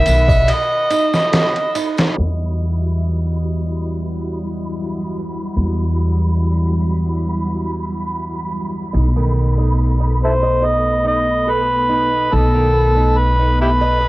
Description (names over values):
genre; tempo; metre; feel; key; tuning
trip hop; 71 BPM; 4/4; swing 54% on 16ths; E harmonic minor; A4 = 438 Hz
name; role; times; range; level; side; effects
overdriven harmonica; melody; 0.0-1.8, 10.2-14.1 s; E4 to E5; -18 LUFS; equal; cassette tape, tape echo
flamenco guitar; arpeggios; 0.0-2.2, 8.9-14.1 s; D#3 to D#5; -25 LUFS; right 5 dB; tape echo
upright bass; bass; 0.0-14.1 s; B1 to E2; -18 LUFS; equal; none
flickering grainy texture; texture; 0.0-14.1 s; B5; -32 LUFS; right 2 dB; built-in reverb
trip hop sampler-style drum kit; drums; 0.1-2.2 s; kick drum, ride cymbal, snare drum; -19 LUFS; equal; cassette tape
triangle and tambourine; percussion; 0.1-2.1 s; none; -34 LUFS; right 7 dB; none
string machine, cellos; sustained chords; 2.2-14.1 s; G3 to D#5; -24 LUFS; equal; ensemble chorus
room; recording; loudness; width
little or no reverb; home recording on cassette, vinyl crackle, low-pass filter; -15 LUFS; side -19 dB against mid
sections
0.0-2.2 A section; 2.2-14.1 B section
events
break 0.5-2.2; filter sweep 2.2-14.1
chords
0.0 B; 2.2 Emadd9; 8.9 B7